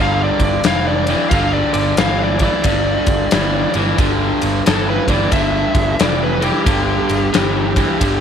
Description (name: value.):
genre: blues rock power trio and southern rock.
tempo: 90 BPM.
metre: 4/4.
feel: swing 63% on 8ths.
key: unclear.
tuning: A4 = 441 Hz.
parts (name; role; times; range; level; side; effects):
smooth overdriven lead guitar; melody; 0.0-8.2 s; G4 to F5; -21 LUFS; equal; none.
overdriven electric guitar; riff; 0.0-8.2 s; G2 to E3; -18 LUFS; right 1 dB; none.
fuzz picked electric bass; bass; 0.0-8.2 s; F1 to G1; -21 LUFS; right 1 dB; overdrive.
huge arena drum kit; drums; 0.4-8.2 s; kick drum, ride cymbal, snare drum; -19 LUFS; left 2 dB; none.
room: light reverb, studio ambience.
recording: 1960s-style stereo.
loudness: -13 LUFS.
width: side -8 dB against mid.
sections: 0.0-8.2 A section.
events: none.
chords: 0.0 G5.